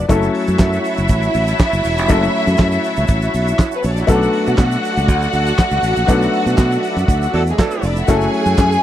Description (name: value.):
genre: disco.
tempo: 120 BPM.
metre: 4/4.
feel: straight.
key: F# minor.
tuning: A4 = 440 Hz.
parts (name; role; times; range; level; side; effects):
clear grand piano; accompaniment; 0.0-8.8 s; F#3 to F#5; -20 LUFS; left 3 dB; none.
overdriven tonewheel organ; sustained chords; 0.0-8.8 s; A3 to B5; -26 LUFS; right 1 dB; chorus vibrato, slow rotary speaker.
fingered electric bass; bass; 0.0-8.8 s; E1 to B2; -18 LUFS; equal; none.
warm studio string section; second line; 0.1-8.8 s; G#3 to G#5; -19 LUFS; equal; none.
warm soul drum kit; drums; 0.1-8.7 s; handclaps, hi-hat, kick drum, snare drum; -14 LUFS; equal; none.
tube shaker; percussion; 0.1-8.8 s; none; -37 LUFS; right 17 dB; none.
warm horn section; stabs; 7.3-7.9 s; F#3 to A4; -21 LUFS; right 4 dB; none.
room: little or no reverb.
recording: dry, close 1970s-style studio recording.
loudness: -13 LUFS.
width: side -12 dB against mid.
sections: 0.1-8.8 A section.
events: band accent 6.1-8.1.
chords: 0.1 F#m7; 4.1 Bm7; 8.1 F#m7.